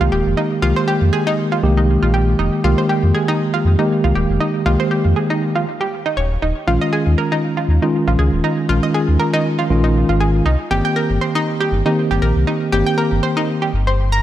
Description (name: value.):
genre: deep house.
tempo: 119 BPM.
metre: 4/4.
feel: swing 55% on 16ths.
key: F minor.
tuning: A4 = 440 Hz.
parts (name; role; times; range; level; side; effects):
analog pluck; arpeggios; 0.0-14.2 s; Eb4 to Bb5; -21 LUFS; right 1 dB; chorus, dub echo.
mellow tine electric piano; stabs; 0.0-13.7 s; Eb3 to G4; -18 LUFS; right 1 dB; medium stereo tremolo, dub echo.
sub bass with octave; bass; 0.0-14.2 s; Eb1 to F2; -16 LUFS; equal; tube saturation.
room: light reverb.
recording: none.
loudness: -14 LUFS.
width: side -12 dB against mid.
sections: 0.0-14.2 A section.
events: none.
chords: 0.0 Fm11; 6.2 Eb9sus4; 10.5 Cm7.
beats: | 0.37 0.88 1.38 1.89 | 2.39 2.89 3.40 3.90 | 4.41 4.91 5.41 5.92 | 6.42 6.93 7.43 7.93 | 8.44 8.94 9.45 9.95 | 10.46 10.96 11.46 11.97 | 12.47 12.98 13.48 13.98.